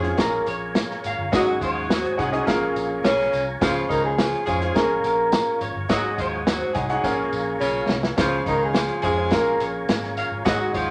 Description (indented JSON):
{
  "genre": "uptempo 1960s-style soul",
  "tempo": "105 BPM",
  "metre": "4/4",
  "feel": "straight",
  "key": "unclear",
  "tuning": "A4 = 440 Hz",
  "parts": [
    { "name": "electric guitar through a small old amp", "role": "melody", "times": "0.0-10.9 s", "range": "Ab4 to F5", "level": "-27 LUFS", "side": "equal", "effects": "none" },
    { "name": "bright saxophone section", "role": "second line", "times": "0.0-10.9 s", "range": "Db3 to Ab4", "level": "-28 LUFS", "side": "equal", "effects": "none" },
    { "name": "clear concert grand piano", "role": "accompaniment", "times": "0.0-10.9 s", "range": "Ab2 to Ab5", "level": "-29 LUFS", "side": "equal", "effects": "none" },
    { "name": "tonewheel organ", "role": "sustained chords", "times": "0.0-10.9 s", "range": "F3 to C5", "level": "-35 LUFS", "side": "equal", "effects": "chorus vibrato, slow rotary speaker" },
    { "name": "vintage muted fingered electric bass", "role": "bass", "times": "0.0-10.9 s", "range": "G1 to F2", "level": "-34 LUFS", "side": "equal", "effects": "none" },
    { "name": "vintage drum kit", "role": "drums", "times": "0.0-10.9 s", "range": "hi-hat, kick drum, snare drum", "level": "-27 LUFS", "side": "equal", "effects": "none" },
    { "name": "tambourine", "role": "percussion", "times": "0.2-10.9 s", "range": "none", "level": "-42 LUFS", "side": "equal", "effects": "none" }
  ],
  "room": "wet studio reverb, RT60 0.5 s",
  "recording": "none",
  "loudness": "-22 LUFS",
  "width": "mono",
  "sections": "0.0-10.9 A section",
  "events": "drum fill 7.0-8.2",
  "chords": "0.2 Bbm7; 1.3 Ab7sus4; 2.5 Bbm7; 3.6 Dbmaj7; 4.8 Bbm7; 5.9 Ab7sus4; 7.0 Bbm7; 8.2 Dbmaj7; 9.3 Bbm7"
}